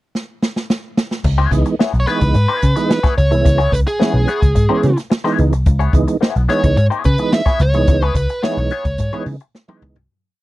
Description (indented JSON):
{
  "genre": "funk",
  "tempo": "108 BPM",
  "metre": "4/4",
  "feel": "straight",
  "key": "C# minor",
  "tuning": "A4 = 440 Hz",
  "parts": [
    { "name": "swinging big-band drum kit", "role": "drums", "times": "0.1-10.1 s", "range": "crash cymbal, hi-hat, kick drum, snare drum, toms", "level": "-17 LUFS", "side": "equal", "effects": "none" },
    { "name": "clean electric guitar", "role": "accompaniment", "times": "1.2-10.0 s", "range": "B3 to C#5", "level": "-23 LUFS", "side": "left 7 dB", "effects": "wah" },
    { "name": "vintage muted picked electric bass", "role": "bass", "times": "1.2-10.1 s", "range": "B1 to C#3", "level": "-15 LUFS", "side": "equal", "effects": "none" },
    { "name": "percussive tonewheel organ", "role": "stabs", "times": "1.5-10.0 s", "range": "E3 to E4", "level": "-19 LUFS", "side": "right 4 dB", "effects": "chorus vibrato, fast rotary speaker" },
    { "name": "nasal lead guitar with a parked wah", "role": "melody", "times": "2.0-9.2 s", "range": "G#4 to E5", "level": "-20 LUFS", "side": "right 1 dB", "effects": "overdrive" }
  ],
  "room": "little or no reverb",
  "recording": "dry, close 1970s-style studio recording",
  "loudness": "-13 LUFS",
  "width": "side -17 dB against mid",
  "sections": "0.0-1.2 pickup bar; 1.2-10.1 groove",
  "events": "drum fill 0.1-1.2, 9.5-10.1; fade-out 7.9-10.1",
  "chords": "0.0 N.C.; 1.2 C#m7",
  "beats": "0.14 0.69 | 1.25 1.80 2.35 2.90 | 3.45 4.00 4.55 5.11 | 5.66 6.21 6.77 7.32 | 7.88 8.43 8.99 9.54"
}